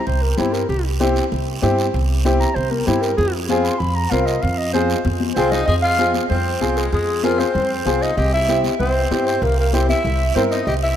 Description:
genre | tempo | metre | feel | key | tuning
latin, cumbia | 192 BPM | 4/4 | straight | F harmonic minor | A4 = 441 Hz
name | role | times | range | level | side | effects
warm clarinet | melody | 0.0-11.0 s | E4 to C6 | -22 LUFS | right 1 dB | tape echo
upright bass | bass | 0.1-11.0 s | C2 to G2 | -21 LUFS | right 1 dB | none
guiro | percussion | 0.1-11.0 s | none | -32 LUFS | right 6 dB | none
clear upright piano | accompaniment | 0.4-10.6 s | C4 to Bb4 | -22 LUFS | left 1 dB | none
congas | percussion | 0.4-10.5 s | none | -27 LUFS | left 7 dB | none
growling tenor saxophone | second line | 5.4-11.0 s | Ab3 to Ab4 | -23 LUFS | left 2 dB | none
room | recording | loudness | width
moderate lush hall reverb, RT60 2.7 s | rough home demo mix | -16 LUFS | side -10 dB against mid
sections
0.0-5.7 A section; 5.7-11.0 B section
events
clarinet solo 0.0-5.7; drum fill 5.1-5.7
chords
0.0 C; 3.2 Fm; 8.2 C7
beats
0.07 0.38 | 0.70 1.01 1.32 1.63 | 1.94 2.25 2.56 2.88 | 3.19 3.50 3.81 4.12 | 4.43 4.75 5.06 5.37 | 5.68 5.99 6.30 6.62 | 6.93 7.24 7.55 7.86 | 8.18 8.49 8.80 9.11 | 9.43 9.74 10.05 10.36 | 10.67

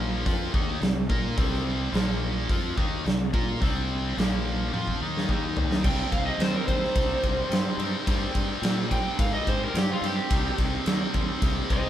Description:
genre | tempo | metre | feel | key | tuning
blues rock power trio and southern rock | 108 BPM | 4/4 | straight | C minor | A4 = 440 Hz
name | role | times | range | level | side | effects
tight distorted guitar | riff | 0.0-11.9 s | Bb2 to Bb4 | -30 LUFS | equal | distortion
fuzz fingered electric bass | bass | 0.0-11.9 s | Bb1 to Bb2 | -31 LUFS | equal | overdrive
big rock drum kit | drums | 0.3-11.8 s | crash cymbal, hi-hat, kick drum, ride cymbal, snare drum, toms | -26 LUFS | equal | none
overdriven tonewheel organ | sustained chords | 5.5-11.9 s | G3 to D5 | -40 LUFS | right 2 dB | none
overdriven slide guitar | melody | 5.9-11.9 s | F4 to G5 | -30 LUFS | right 1 dB | none
room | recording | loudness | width
light reverb | band playing live in one room | -23 LUFS | side -11 dB against mid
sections
0.0-5.8 A section; 5.8-11.9 B section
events
drum fill 4.7-5.8; electric slide guitar solo 5.8-11.9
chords
0.3 Cm; 1.9 Bb5; 2.5 Cm; 4.2 Bb5; 4.7 Cm; 5.3 Eb5; 5.8 Cm7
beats
0.26 0.82 | 1.38 1.94 2.49 3.05 | 3.61 4.17 4.72 5.28 | 5.84 6.40 6.96 7.51 | 8.07 8.63 9.19 9.75 | 10.31 10.87 11.42

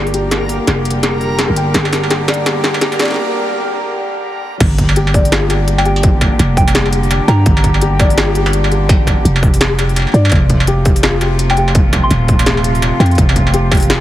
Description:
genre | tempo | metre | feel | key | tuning
half-time drum and bass | 168 BPM | 4/4 | swing 60% on 16ths, half-time | G minor | A4 = 440 Hz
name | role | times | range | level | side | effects
warm studio cello section | sustained chords | 0.0-14.0 s | C3 to G4 | -21 LUFS | equal | sidechain pumping
felt-muted upright piano | arpeggios | 0.0-14.0 s | F4 to G5 | -21 LUFS | left 3 dB | low-pass filter, digital delay
growling 808-style bass | bass | 0.0-14.0 s | Eb1 to G2 | -14 LUFS | equal | none
backwards swelling texture | texture | 0.1-3.2 s | Bb4 | -25 LUFS | right 2 dB | built-in reverb
industrial drum kit | drums | 0.1-14.0 s | crash cymbal, hi-hat, snare drum, struck metal | -17 LUFS | equal | overdrive
electronic kick drum | drums | 4.6-13.8 s | none | -13 LUFS | equal | distortion, overdrive
soft synth bell | melody | 5.8-7.6, 11.5-12.4 s | G5 to C6 | -22 LUFS | equal | chorus, ping-pong delay
room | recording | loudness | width
light reverb | heavily compressed radio sound, multiband compression, high-pass filter | -11 LUFS | side -14 dB against mid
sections
0.0-4.6 A section; 4.6-14.0 B section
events
build-up 0.0-4.6; drum fill 0.0-3.2; break 3.2-4.6; drop 4.6-14.0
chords
0.0 Gm; 10.3 F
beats
| 0.32 0.68 1.04 1.39 | 1.75 2.11 2.46 2.82 | 3.18 3.54 3.89 4.25 | 4.61 4.96 5.32 5.68 | 6.04 6.39 6.75 7.11 | 7.46 7.82 8.18 8.54 | 8.89 9.25 9.61 9.96 | 10.32 10.68 11.04 11.39 | 11.75 12.11 12.46 12.82 | 13.18 13.54 13.89

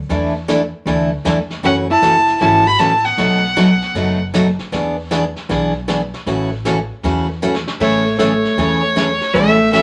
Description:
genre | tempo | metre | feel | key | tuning
country, western swing | 156 BPM | 4/4 | swing 66% on 8ths | A major | A4 = 440 Hz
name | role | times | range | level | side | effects
upright bass | bass | 0.0-9.8 s | F#1 to F#2 | -28 LUFS | equal | none
picked steel-string acoustic guitar | accompaniment | 0.1-9.8 s | B2 to A4 | -19 LUFS | equal | none
vintage brush drum kit | drums | 0.1-9.8 s | brushed snare drum, crash cymbal, hi-hat, kick drum, snare drum | -30 LUFS | equal | none
clear fiddle | melody | 1.6-4.2, 7.8-9.8 s | C#5 to B5 | -17 LUFS | equal | none
vintage hollow-body jazz guitar | second line | 1.7-4.2, 7.8-9.8 s | A3 to F#4 | -21 LUFS | equal | none
room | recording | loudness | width
moderate studio reverb, RT60 0.6 s | none | -16 LUFS | mono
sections
0.0-7.8 A section; 7.8-9.8 A section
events
drum fill 7.4-7.8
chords
0.1 E7sus4; 1.6 F#m7; 3.2 B7; 4.7 E7; 6.3 A6; 7.8 Amaj7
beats
| 0.09 0.48 0.86 1.25 | 1.64 2.02 2.41 2.79 | 3.18 3.56 3.95 4.33 | 4.72 5.11 5.49 5.88 | 6.26 6.65 7.03 7.42 | 7.80 8.19 8.57 8.96 | 9.35 9.73

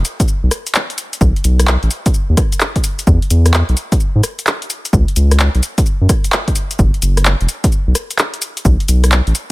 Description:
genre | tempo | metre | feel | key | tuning
UK garage, two-step garage | 129 BPM | 4/4 | swing 65% on 16ths | unclear | A4 = 444 Hz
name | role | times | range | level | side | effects
saturated sub bass | bass | 0.0-9.3 s | E1 to G#2 | -12 LUFS | equal | tube saturation
punchy analog drum machine | drums | 0.0-9.5 s | handclaps, hi-hat, rim click, shaker | -18 LUFS | equal | none
electronic kick drum | drums | 0.2-8.8 s | none | -14 LUFS | equal | none
room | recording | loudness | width
little or no reverb | none | -12 LUFS | side -21 dB against mid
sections
0.0-9.5 A section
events
none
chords
none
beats
0.28 0.74 | 1.21 1.68 2.14 2.61 | 3.07 3.54 4.00 4.47 | 4.93 5.40 5.86 6.33 | 6.79 7.26 7.72 8.19 | 8.65 9.12

